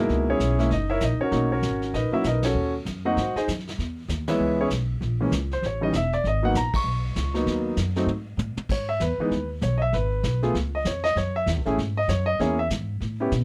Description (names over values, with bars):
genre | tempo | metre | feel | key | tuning
jazz piano trio | 195 BPM | 4/4 | swing 61% on 8ths | G# minor, C# minor from 8.7 s | A4 = 438 Hz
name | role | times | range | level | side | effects
warm concert grand piano | melody | 0.0-13.3 s | B2 to C#6 | -27 LUFS | equal | none
upright bass | bass | 0.0-13.4 s | E1 to B2 | -29 LUFS | equal | none
vintage brush drum kit | drums | 0.1-13.4 s | brushed snare drum, crash cymbal, hi-hat, kick drum, ride cymbal, snare drum, toms | -35 LUFS | equal | none
room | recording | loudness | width
little or no reverb | dry, close 1970s-style studio recording | -25 LUFS | mono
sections
0.0-8.7 A section; 8.7-13.4 B section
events
band accent 2.4, 4.2, 6.7; drum fill 8.1-8.7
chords
0.1 C#m7; 0.7 F#7; 1.3 Bmaj9; 2.5 D#m7b5; 3.2 G#7; 3.8 C#m7; 5.0 A#m; 5.6 A(#11); 6.2 G#m7; 8.1 N.C.; 8.7 C#m9; 9.9 G#m; 10.5 C#; 11.2 F#5; 12.4 A#m7b5